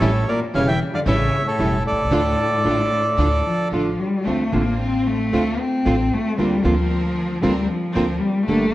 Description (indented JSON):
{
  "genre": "tango",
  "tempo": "114 BPM",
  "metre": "4/4",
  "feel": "rubato",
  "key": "D minor",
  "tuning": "A4 = 440 Hz",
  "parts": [
    { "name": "bandoneon", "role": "melody", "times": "0.0-3.7 s", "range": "A4 to G5", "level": "-21 LUFS", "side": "right 1 dB", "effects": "none" },
    { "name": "warm cello", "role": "second line", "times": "0.0-8.7 s", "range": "A2 to C4", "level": "-22 LUFS", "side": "left 2 dB", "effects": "none" },
    { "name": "nylon-string guitar", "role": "accompaniment", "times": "0.0-8.7 s", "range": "D3 to A4", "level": "-23 LUFS", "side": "right 1 dB", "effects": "none" },
    { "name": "bright symphonic string section", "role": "stabs", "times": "0.0-8.7 s", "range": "Bb3 to Bb4", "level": "-33 LUFS", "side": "right 1 dB", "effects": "none" },
    { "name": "upright bass", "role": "bass", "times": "0.0-8.7 s", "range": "E1 to D2", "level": "-24 LUFS", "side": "equal", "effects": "none" }
  ],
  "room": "moderate scoring stage reverb, RT60 2.1 s",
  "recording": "worn, warbling old tape, cassette tape, warbly pitch drift",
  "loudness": "-18 LUFS",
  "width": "side -16 dB against mid",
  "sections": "0.0-4.3 A section; 4.3-8.7 B section",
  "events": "cello solo 4.3-8.7",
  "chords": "0.0 A7; 2.1 Dm; 4.3 Dm7; 6.4 Bbadd9/D",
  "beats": "| 0.01 0.54 1.06 1.58 | 2.11 2.64 3.17 3.71 | 4.26 4.80 5.33 5.86 | 6.39 6.91 7.44 7.96 | 8.48"
}